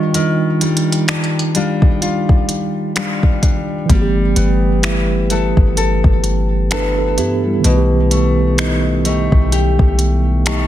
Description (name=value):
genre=contemporary R&B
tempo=64 BPM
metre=4/4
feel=swing 58% on 16ths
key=G major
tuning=A4 = 445 Hz
part: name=mellow tine electric piano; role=accompaniment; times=0.0-10.7 s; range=Eb3 to B4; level=-18 LUFS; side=right 3 dB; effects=medium stereo tremolo
part: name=nylon-string guitar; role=arpeggios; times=0.0-10.7 s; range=B2 to A4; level=-20 LUFS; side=left 4 dB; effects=ping-pong delay
part: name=smooth R&B drum kit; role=drums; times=0.1-10.7 s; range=finger snaps, hi-hat, kick drum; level=-16 LUFS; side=equal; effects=soft clipping on snare
part: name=clean 808-style bass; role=bass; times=3.9-10.7 s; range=G1 to G2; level=-16 LUFS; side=equal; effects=none
room=digital ambience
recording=dense, heavily limited modern master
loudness=-13 LUFS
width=side -12 dB against mid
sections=0.0-10.7 A section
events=none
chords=0.0 Ebmaj9; 3.9 G69; 7.6 B7b13